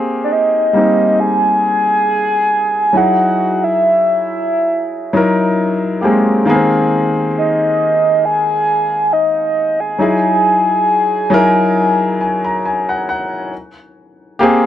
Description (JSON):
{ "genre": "R&B", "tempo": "68 BPM", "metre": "4/4", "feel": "swing 53% on 16ths", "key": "Ab major", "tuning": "A4 = 445 Hz", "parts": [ { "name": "warm grand piano", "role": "accompaniment", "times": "0.0-14.7 s", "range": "Eb3 to Bb5", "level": "-15 LUFS", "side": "left 2 dB", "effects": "none" }, { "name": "soft octave-layered synth lead", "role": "melody", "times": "0.2-13.1 s", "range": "D5 to Ab5", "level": "-13 LUFS", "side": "right 1 dB", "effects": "chorus, phaser" } ], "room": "light reverb", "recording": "dry, close 1970s-style studio recording", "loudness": "-12 LUFS", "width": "side -11 dB against mid", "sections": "0.0-13.5 A section; 13.5-14.7 B section", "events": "grand piano fill 11.8-13.5", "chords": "0.0 Abmaj9; 2.9 Emaj9; 6.5 Abmaj9; 10.0 Emaj9; 13.5 Abmaj9" }